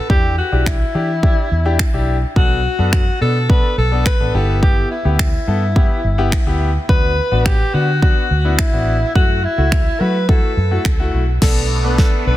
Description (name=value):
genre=dance-pop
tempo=106 BPM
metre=4/4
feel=straight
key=B minor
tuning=A4 = 440 Hz
part: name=warm alto saxophone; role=melody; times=0.0-12.4 s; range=E4 to B4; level=-21 LUFS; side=left 1 dB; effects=ping-pong delay
part: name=clear baby grand piano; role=accompaniment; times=0.1-12.4 s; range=A3 to B4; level=-24 LUFS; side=left 4 dB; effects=none
part: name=vintage muted fingered electric bass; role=bass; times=0.1-12.4 s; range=G1 to F#3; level=-18 LUFS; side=equal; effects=sidechain pumping
part: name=pop drum kit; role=drums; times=0.1-12.1 s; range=crash cymbal, finger snaps, kick drum, snare drum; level=-15 LUFS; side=equal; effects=soft clipping on snare
part: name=filtered supersaw swell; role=sustained chords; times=11.4-12.4 s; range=A3 to D4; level=-25 LUFS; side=right 2 dB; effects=phaser, sidechain pumping
room=light reverb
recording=dense, heavily limited modern master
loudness=-13 LUFS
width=side -14 dB against mid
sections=0.0-11.4 A section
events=drum fill 11.4-12.4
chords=0.1 Em7; 2.4 Bm7; 4.3 G6; 6.9 D6; 9.2 F#m7; 11.4 Bm7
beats=| 0.10 0.66 1.23 1.80 | 2.36 2.93 3.49 4.06 | 4.63 5.19 5.76 6.32 | 6.89 7.46 8.02 8.59 | 9.15 9.72 10.29 10.85 | 11.42 11.98